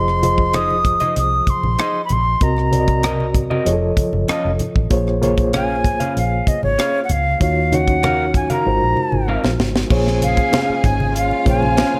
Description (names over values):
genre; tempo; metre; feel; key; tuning
lush 1970s-style soul; 96 BPM; 4/4; straight; unclear; A4 = 439 Hz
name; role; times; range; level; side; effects
silver concert flute; melody; 0.0-12.0 s; Db5 to Eb6; -22 LUFS; equal; slapback echo
reed electric piano; accompaniment; 0.0-12.0 s; C3 to Eb5; -24 LUFS; equal; overdrive, fast tremolo
vintage muted fingered electric bass; bass; 0.0-11.8 s; F1 to Eb2; -24 LUFS; equal; none
tight funk drum kit; drums; 0.1-11.9 s; crash cymbal, hi-hat, kick drum, rim click, snare drum; -22 LUFS; equal; none
congas; percussion; 0.2-12.0 s; none; -29 LUFS; equal; none
electric guitar through a small old amp; riff; 0.5-12.0 s; C4 to F5; -28 LUFS; equal; none
warm studio violin section; second line; 9.9-12.0 s; F4 to Ab5; -29 LUFS; equal; none
warm French horn section; sustained chords; 9.9-12.0 s; Db3 to Db4; -29 LUFS; equal; none
room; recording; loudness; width
light reverb; none; -17 LUFS; mono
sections
0.0-9.9 A section; 9.9-12.0 B section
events
drum fill 8.7-9.9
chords
0.0 Fm7; 2.4 Cm7b5; 3.7 F7b13; 4.9 Bbm9; 7.4 Ebm9; 8.7 Ab13; 9.9 Bbm9